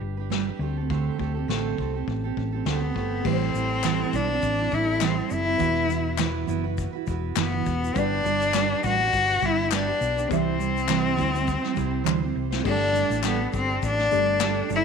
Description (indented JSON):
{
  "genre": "acoustic pop",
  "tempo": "102 BPM",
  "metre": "4/4",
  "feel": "swing 55% on 16ths",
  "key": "G major",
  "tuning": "A4 = 439 Hz",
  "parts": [
    { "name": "fingerpicked steel-string acoustic guitar", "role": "accompaniment", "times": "0.0-14.8 s", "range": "A2 to C5", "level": "-28 LUFS", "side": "right 12 dB", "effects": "none" },
    { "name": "hollow-body short-scale fingered electric bass", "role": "bass", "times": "0.0-14.8 s", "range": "E1 to D2", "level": "-29 LUFS", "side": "left 2 dB", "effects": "none" },
    { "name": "vintage brush drum kit", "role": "drums", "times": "0.3-14.8 s", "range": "crash cymbal, kick drum, shaker, snare drum", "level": "-33 LUFS", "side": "left 9 dB", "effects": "none" },
    { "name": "clear cello", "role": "melody", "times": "2.7-14.8 s", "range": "B3 to F#4", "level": "-25 LUFS", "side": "left 3 dB", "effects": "slapback echo" },
    { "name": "dark upright piano", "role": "accompaniment", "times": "3.2-14.8 s", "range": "G3 to E5", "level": "-35 LUFS", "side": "left 16 dB", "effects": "none" },
    { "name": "group handclap", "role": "percussion", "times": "3.8-14.6 s", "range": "none", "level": "-31 LUFS", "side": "left 17 dB", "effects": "none" }
  ],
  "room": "light reverb, small room reverb",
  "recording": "1960s-style stereo with parts hard left and right",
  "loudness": "-22 LUFS",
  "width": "side -6 dB against mid",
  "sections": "0.0-3.3 A section; 3.3-12.7 B section; 12.7-14.8 C section",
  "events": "drum fill 12.1-12.7",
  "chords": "0.0 G; 0.6 D7sus4; 3.3 Am7; 5.6 Esus2; 8.0 G; 10.3 C; 12.7 Gsus2",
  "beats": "0.32 | 0.91 1.49 2.08 2.67 | 3.26 3.85 4.43 5.02 | 5.61 6.20 6.78 7.37 | 7.96 8.54 9.13 9.72 | 10.30 10.89 11.48 12.07 | 12.65 13.24 13.83 14.41"
}